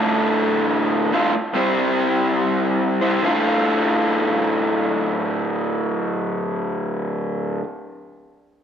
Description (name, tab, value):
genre	rock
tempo	free time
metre	none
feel	none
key	D minor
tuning	A4 = 439 Hz
part	raw garage guitar	riff	0.0-7.6 s	D2 to C5	-18 LUFS	equal	overdrive, spring reverb
room	moderate echo chamber reverb, RT60 1.9 s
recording	none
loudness	-18 LUFS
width	side -8 dB against mid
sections	0.0-3.2 A section; 3.2-6.6 B section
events	none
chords	0.0 Dm; 1.5 C; 3.2 Dm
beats	free time